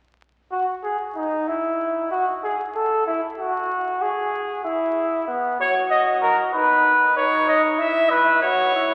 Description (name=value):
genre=classical, imitative canzona for brass ensemble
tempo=95 BPM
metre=4/4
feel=straight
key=unclear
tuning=A4 = 440 Hz
part: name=warm trumpet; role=second line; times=0.5-8.9 s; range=B3 to A4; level=-25 LUFS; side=equal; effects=none
part: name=clear trumpet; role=melody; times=5.6-8.9 s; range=A#4 to E5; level=-20 LUFS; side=equal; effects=none
room=wet church reverb, RT60 3.8 s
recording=very old 78 rpm record, vinyl crackle, faint mains hum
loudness=-21 LUFS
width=mono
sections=0.2-8.9 A section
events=none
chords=0.2 N.C.; 5.3 B5; 6.5 B/D#; 7.8 C#m/E